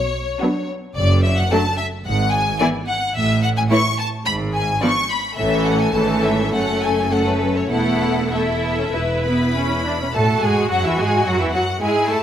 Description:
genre	quick classical-period movement for string orchestra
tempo	93-111 BPM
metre	4/4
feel	rubato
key	A major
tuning	A4 = 440 Hz
part	bright studio violin section	melody	0.0-12.2 s	B4 to C#6	-22 LUFS	left 3 dB	none
part	clear studio cello section	bass	0.0-12.2 s	E2 to F#4	-25 LUFS	right 2 dB	none
part	rich studio double bass section	bass	0.0-12.2 s	E1 to A2	-24 LUFS	right 2 dB	none
part	rich studio violin section	second line	0.4-12.2 s	C#4 to D5	-22 LUFS	left 2 dB	none
part	rich studio viola section	accompaniment	0.4-12.2 s	E3 to E4	-22 LUFS	right 1 dB	none
room	moderate scoring stage reverb, RT60 1.5 s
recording	none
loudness	-16 LUFS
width	side -10 dB against mid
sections	0.0-10.1 A section; 10.1-12.2 B section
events	none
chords	0.0 Bm; 1.0 D/F#; 2.1 N.C.; 3.2 A; 4.3 G#m; 5.4 A; 6.5 F#m; 7.7 Esus4; 8.9 E5; 10.1 A5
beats	0.42 | 0.96 1.51 2.06 2.60 | 3.15 3.71 4.26 4.82 | 5.38 5.94 6.51 7.10 | 7.71 8.31 8.93 9.55 | 10.14 10.71 11.27 11.83

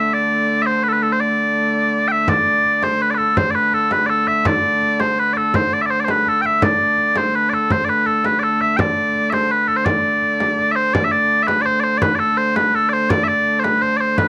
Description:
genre	medieval dance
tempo	166 BPM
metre	3/4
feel	straight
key	unclear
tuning	A4 = 440 Hz
part	mellow small bagpipes	melody	0.0-14.3 s	A4 to G5	-18 LUFS	equal	none
part	dark hurdy-gurdy	drone	0.0-14.3 s	D3 to A3	-26 LUFS	equal	none
part	frame drum	percussion	2.3-14.3 s	none	-24 LUFS	equal	none
room	moderate studio reverb, RT60 0.5 s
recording	cassette tape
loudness	-17 LUFS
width	mono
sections	0.0-2.3 A section; 2.3-11.0 A section; 11.0-14.3 B section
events	none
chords	none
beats	| 0.11 0.47 0.83 | 1.20 1.56 1.92 | 2.29 2.65 3.01 | 3.37 3.73 4.09 | 4.46 4.82 5.18 | 5.54 5.90 6.26 | 6.63 6.99 7.35 | 7.71 8.07 8.43 | 8.79 9.15 9.51 | 9.87 10.23 10.59 | 10.95 11.31 11.67 | 12.03 12.39 12.75 | 13.11 13.47 13.82 | 14.18

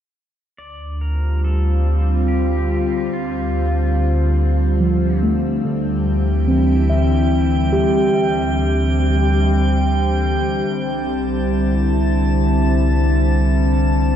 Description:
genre	ambient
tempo	71 BPM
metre	3/4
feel	straight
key	D minor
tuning	A4 = 440 Hz
part	pedal steel guitar	melody	0.6-5.2 s	F4 to D5	-33 LUFS	left 2 dB	ping-pong delay
part	evolving wavetable pad	sustained chords	1.2-14.2 s	D3 to F4	-20 LUFS	left 1 dB	chorus, built-in reverb
part	warm sub bass	bass	0.6-14.2 s	C2 to D2	-18 LUFS	equal	none
part	muted felt-like synth keys	arpeggios	4.8-10.9 s	D3 to E5	-21 LUFS	equal	chorus, ping-pong delay
part	drifting glass-harmonics texture	texture	6.2-14.2 s	G5 to A5	-26 LUFS	right 2 dB	chorus, built-in reverb
room	moderate lush hall reverb, RT60 2.6 s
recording	dark, warm production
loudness	-15 LUFS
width	side -9 dB against mid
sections	0.6-10.7 A section; 10.7-14.2 B section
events	fade-in on pedal steel guitar 0.6-10.7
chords	0.6 Dm; 3.1 G5/D; 5.6 Am/D; 8.1 G5/D; 10.7 C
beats	| 0.58 1.43 2.28 | 3.12 3.97 4.80 | 5.64 6.47 7.30 | 8.13 8.97 9.82 | 10.67 11.52 12.37 | 13.20 14.04

